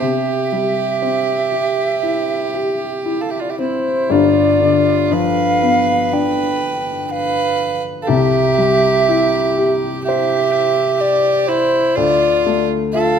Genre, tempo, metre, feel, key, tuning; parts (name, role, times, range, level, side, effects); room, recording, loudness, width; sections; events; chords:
celtic folk, Celtic slow air; 60 BPM; 4/4; uneven beats, rubato; C major; A4 = 440 Hz
baroque flute; melody; 0.0-13.2 s; C5 to G5; -18 LUFS; right 2 dB
rich fiddle; second line; 0.0-13.2 s; E4 to B4; -20 LUFS; right 3 dB
warm upright piano; accompaniment; 0.0-13.2 s; G1 to C5; -19 LUFS; left 4 dB
light reverb; minimal, uncompressed stereo recording; -14 LUFS; side -7 dB against mid
0.0-4.1 A section; 4.1-13.2 B section
0.0 C; 4.1 G7; 8.1 C; 12.0 Dm